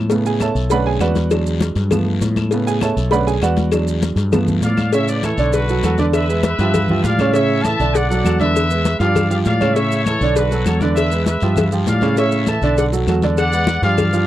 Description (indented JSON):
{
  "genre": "latin, salsa",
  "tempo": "199 BPM",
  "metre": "4/4",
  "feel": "straight",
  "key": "A major",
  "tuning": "A4 = 440 Hz",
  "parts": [
    { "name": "clear concert grand piano", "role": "accompaniment", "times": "0.0-14.3 s", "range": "C#3 to B5", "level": "-20 LUFS", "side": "right 4 dB", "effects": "none" },
    { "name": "mellow fretless electric bass", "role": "bass", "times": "0.0-14.2 s", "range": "B1 to A2", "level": "-19 LUFS", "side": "left 1 dB", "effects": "none" },
    { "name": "congas", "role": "percussion", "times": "0.1-14.3 s", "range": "none", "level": "-23 LUFS", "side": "left 2 dB", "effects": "none" },
    { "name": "cowbell", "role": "percussion", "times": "0.1-14.1 s", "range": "none", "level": "-24 LUFS", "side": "left 6 dB", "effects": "none" },
    { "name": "guiro", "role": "percussion", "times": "0.1-14.3 s", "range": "none", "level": "-36 LUFS", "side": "left 10 dB", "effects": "none" },
    { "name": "maracas", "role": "percussion", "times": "0.1-14.3 s", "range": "none", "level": "-36 LUFS", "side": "right 9 dB", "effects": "none" },
    { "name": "claves", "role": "percussion", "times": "0.4-14.1 s", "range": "none", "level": "-35 LUFS", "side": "left 5 dB", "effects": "none" },
    { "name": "bright trumpet section", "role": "melody", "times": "4.6-14.3 s", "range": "F#4 to A5", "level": "-21 LUFS", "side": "left 1 dB", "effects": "none" }
  ],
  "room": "light reverb",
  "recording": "dry, close 1970s-style studio recording",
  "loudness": "-14 LUFS",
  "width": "side -13 dB against mid",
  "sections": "0.0-4.9 A section; 4.9-14.3 B section",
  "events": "grand piano solo 0.0-4.9",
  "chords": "0.1 Aadd9; 0.7 Bm7; 1.3 E7; 1.9 G7; 2.5 Aadd9; 3.1 Bm7; 3.7 E7; 4.3 G7; 4.9 Aadd9; 5.5 Bm7; 6.1 E7; 6.7 G7; 7.3 Aadd9; 7.9 Bm7; 8.6 E7; 9.2 G5; 9.8 Aadd9; 10.4 Bm7; 11.0 E7; 11.6 G7; 12.2 Aadd9; 12.8 Bm7; 13.4 E7"
}